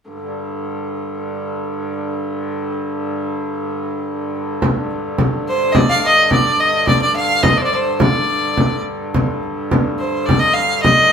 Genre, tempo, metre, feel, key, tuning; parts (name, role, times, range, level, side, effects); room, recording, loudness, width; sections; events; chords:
medieval dance; 106 BPM; 2/4; straight; A4 = 442 Hz
warm hurdy-gurdy; drone; 0.1-11.1 s; G2 to D3; -23 LUFS; equal
frame drum; percussion; 4.6-11.1 s; -16 LUFS; equal
clear fiddle; melody; 5.5-11.1 s; C5 to F5; -14 LUFS; equal
wet studio reverb, RT60 0.7 s; band playing live in one room; -15 LUFS; side -7 dB against mid
0.1-4.6 A section; 4.6-11.1 B section